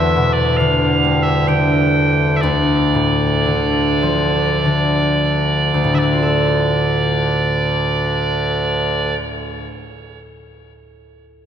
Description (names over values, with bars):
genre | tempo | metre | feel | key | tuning
celtic folk, Celtic slow air | 43-70 BPM | 3/4 | rubato | D minor | A4 = 438 Hz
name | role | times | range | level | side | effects
loud bright bagpipes | melody | 0.0-9.1 s | D2 to G5 | -17 LUFS | right 2 dB | ping-pong delay
concert harp | accompaniment | 0.0-9.8 s | D2 to A4 | -17 LUFS | left 2 dB | none
room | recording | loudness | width
moderate lush hall reverb, RT60 1.9 s, small room ambience | dreamy mix soaked in reverb | -14 LUFS | side -9 dB against mid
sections
0.0-6.0 A section; 6.0-10.0 B section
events
slowing down 0.0-6.0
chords
0.0 Em7; 2.4 Dm